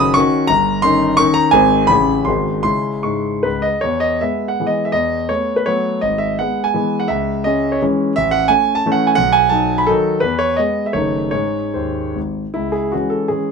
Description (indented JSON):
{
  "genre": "classical, romantic triple-time dance for piano with dotted rhythms",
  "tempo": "138-186 BPM",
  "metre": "3/4",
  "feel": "rubato",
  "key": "C# minor, E major from 3.8 s, C# minor from 8.1 s",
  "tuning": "A4 = 440 Hz",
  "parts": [
    { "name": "warm concert grand piano", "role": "solo", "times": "0.0-13.5 s", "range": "F#1 to D#6", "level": "-14 LUFS", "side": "equal", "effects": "none" }
  ],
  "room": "moderate studio reverb, RT60 0.8 s",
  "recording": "none",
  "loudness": "-14 LUFS",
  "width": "side -5 dB against mid",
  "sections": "0.0-3.8 A section; 3.8-12.6 B section",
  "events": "none",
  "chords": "0.0 D#m7b5/F#; 0.5 D#7/G; 1.5 G#; 1.9 A; 2.3 G#7; 2.6 C#m; 3.8 E; 4.9 B7/E; 6.0 E/G#; 7.1 C#m; 8.1 A; 9.2 B; 10.2 E; 10.9 D#dim/F#; 11.3 G#; 12.6 C#m"
}